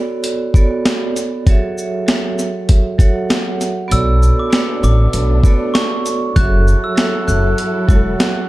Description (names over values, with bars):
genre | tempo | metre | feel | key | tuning
hip hop, boom-bap hip-hop | 98 BPM | 4/4 | swing 56% on 16ths | B minor | A4 = 441 Hz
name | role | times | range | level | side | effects
vibraphone with hard mallets | accompaniment | 0.0-8.5 s | F#3 to F#5 | -20 LUFS | right 3 dB | cassette tape, analog delay
boom bap sampler-style drum kit | drums | 0.2-8.4 s | hi-hat, kick drum, shaker, snare drum | -14 LUFS | equal | none
glockenspiel with soft plastic mallets | melody | 3.9-7.4 s | C#6 to F#6 | -22 LUFS | right 1 dB | analog delay
dark studio string section | sustained chords | 3.9-8.5 s | F#3 to A4 | -26 LUFS | left 3 dB | none
upright bass | bass | 3.9-8.1 s | E1 to B1 | -13 LUFS | equal | none
room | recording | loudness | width
small room ambience | echo-heavy mix | -13 LUFS | side -17 dB against mid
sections
0.0-8.5 A section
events
break 0.0-3.9; kick muted 3.9-5.1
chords
0.0 Bm7; 1.5 F#m7; 3.9 Bm7; 6.4 F#m7